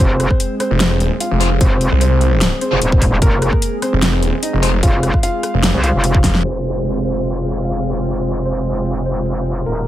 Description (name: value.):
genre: heavy wobble dubstep.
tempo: 149 BPM.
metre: 4/4.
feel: swing 53% on 16ths, half-time.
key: F minor.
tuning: A4 = 439 Hz.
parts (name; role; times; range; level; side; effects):
dark grand piano; melody; 0.0-9.9 s; Bb3 to F5; -23 LUFS; equal; ping-pong delay.
supersaw pad; sustained chords; 0.0-9.9 s; Eb3 to Bb4; -24 LUFS; equal; sidechain pumping, low-pass filter.
metallic wobble bass; bass; 0.0-9.9 s; Eb1 to C2; -18 LUFS; equal; chorus, overdrive.
dubstep drum kit; drums; 0.0-9.7 s; crash cymbal, hi-hat, rim click, snare drum; -20 LUFS; equal; none.
electronic kick drum; drums; 0.0-6.3 s; none; -15 LUFS; equal; none.
snarling distorted saw bass; bass; 0.7-6.4 s; F1 to C2; -15 LUFS; equal; distortion, overdrive.
fuzz guitar; stabs; 1.4-4.7 s; Ab3 to C5; -23 LUFS; left 1 dB; distortion.
downlifter; sound effects; 6.5-9.7 s; none; -30 LUFS; equal; none.
room: little or no reverb.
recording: low-pass filter.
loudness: -14 LUFS.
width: side -13 dB against mid.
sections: 0.0-6.4 A section; 6.4-9.9 B section.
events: drop 0.0-6.4; drum fill 6.2; filter sweep 6.4-9.9.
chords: 0.0 Fm.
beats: | 0.00 0.40 0.80 1.21 | 1.61 2.01 2.41 2.82 | 3.22 3.62 4.02 4.43 | 4.83 5.23 5.63 6.04 | 6.44 6.84 7.25 7.65 | 8.05 8.45 8.86 9.26 | 9.66.